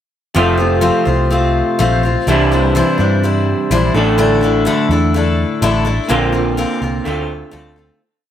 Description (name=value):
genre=folk rock and heartland rock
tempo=126 BPM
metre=4/4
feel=straight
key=unclear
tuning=A4 = 440 Hz
part: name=picked steel-string acoustic guitar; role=accompaniment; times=0.3-8.0 s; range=A2 to C5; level=-16 LUFS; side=left 4 dB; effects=none
part: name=electric guitar through a small old amp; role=riff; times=0.3-8.0 s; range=F2 to F4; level=-17 LUFS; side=right 2 dB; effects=lush chorus
part: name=hollow-body short-scale picked electric bass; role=bass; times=0.4-7.9 s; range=F1 to G2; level=-17 LUFS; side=equal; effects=none
room=light reverb, small room ambience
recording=none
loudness=-12 LUFS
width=side -10 dB against mid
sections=0.4-8.0 verse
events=fade-out 6.1-8.0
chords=0.4 F; 2.3 Cadd9; 3.9 Asus4; 6.1 Bbadd9; 7.1 Dm7